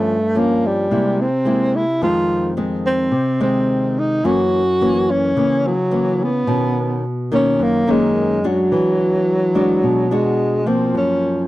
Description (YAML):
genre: bossa nova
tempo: 108 BPM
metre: 4/4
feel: straight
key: unclear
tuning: A4 = 440 Hz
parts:
  - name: breathy tenor saxophone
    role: melody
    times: 0.0-11.5 s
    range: Gb3 to Gb4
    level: -17 LUFS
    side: equal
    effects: none
  - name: nylon-string guitar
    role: accompaniment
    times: 0.0-11.5 s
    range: F2 to F#4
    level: -18 LUFS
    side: left 1 dB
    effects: none
room: little or no reverb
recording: dry, close 1970s-style studio recording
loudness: -15 LUFS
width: side -16 dB against mid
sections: 0.0-11.5 A section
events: none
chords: 0.0 Gm7b5; 0.9 C7b13; 2.0 Fm7; 4.2 Gb7; 6.5 Bmaj9; 8.7 E9; 10.9 Gbmaj7